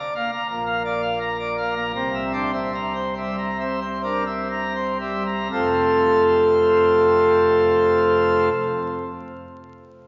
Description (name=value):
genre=classical, organ toccata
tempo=57-88 BPM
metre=4/4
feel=straight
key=F major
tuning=A4 = 441 Hz
part: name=pipe organ, plenum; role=solo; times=0.0-8.5 s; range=F1 to Bb5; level=-21 LUFS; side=equal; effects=none
room=wet church reverb, RT60 3.2 s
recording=vinyl crackle, nothing above 7.5 kHz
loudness=-21 LUFS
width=mono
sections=0.0-5.5 A section; 5.5-9.7 B section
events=slowing down 0.0-5.5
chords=0.0 Bb; 2.0 C7; 5.5 F